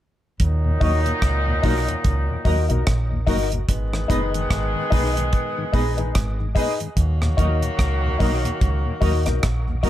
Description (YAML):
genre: roots reggae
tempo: 73 BPM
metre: 4/4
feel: swing 60% on 16ths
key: Eb minor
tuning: A4 = 440 Hz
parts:
  - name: mellow horn section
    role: second line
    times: 0.4-9.8 s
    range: Bb2 to Ab4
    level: -27 LUFS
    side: equal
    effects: dub echo
  - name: deep dub fingered electric bass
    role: bass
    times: 0.4-9.9 s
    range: Gb1 to Eb2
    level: -22 LUFS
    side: equal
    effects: none
  - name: deep reggae drum kit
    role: drums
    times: 0.4-9.9 s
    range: hi-hat, kick drum, rim click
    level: -23 LUFS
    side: equal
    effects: none
  - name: mellow tonewheel organ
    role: accompaniment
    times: 0.6-9.9 s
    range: Eb2 to Eb4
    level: -28 LUFS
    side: left 2 dB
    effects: slow rotary speaker
  - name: clean electric guitar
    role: accompaniment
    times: 0.8-9.9 s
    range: Gb4 to Eb5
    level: -31 LUFS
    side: equal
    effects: lush chorus, dub echo
  - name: warm upright piano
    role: stabs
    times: 0.8-9.9 s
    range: Eb4 to Cb5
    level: -28 LUFS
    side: left 5 dB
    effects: none
room: little or no reverb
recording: none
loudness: -19 LUFS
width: side -13 dB against mid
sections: 0.4-9.9 A section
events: none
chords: 0.4 Ebm; 3.7 Abm; 7.0 Ebm